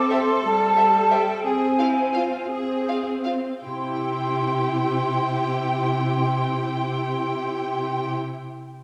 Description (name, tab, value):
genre	cinematic, playful, whimsical film cue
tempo	52-61 BPM (dotted quarters)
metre	6/8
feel	straight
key	C major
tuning	A4 = 440 Hz
part	mellow hollow flute section	second line	0.0-8.2 s	G5 to D6	-27 LUFS	equal	none
part	rich studio viola section	accompaniment	0.0-8.1 s	G3 to E4	-30 LUFS	equal	none
part	clear studio cello section	bass	0.0-8.1 s	C3 to A4	-28 LUFS	equal	none
part	rich studio violin section	melody	0.1-8.1 s	E5 to G5	-33 LUFS	equal	none
part	rich studio violin section	second line	0.1-8.2 s	F4 to C5	-37 LUFS	equal	none
room	wet scoring stage reverb, RT60 1.6 s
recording	heard from further back in the room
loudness	-23 LUFS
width	mono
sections	0.0-3.6 A section; 3.6-8.2 B section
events	slowing down 0.0-3.6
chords	0.0 C5; 1.4 Fm/C; 3.6 C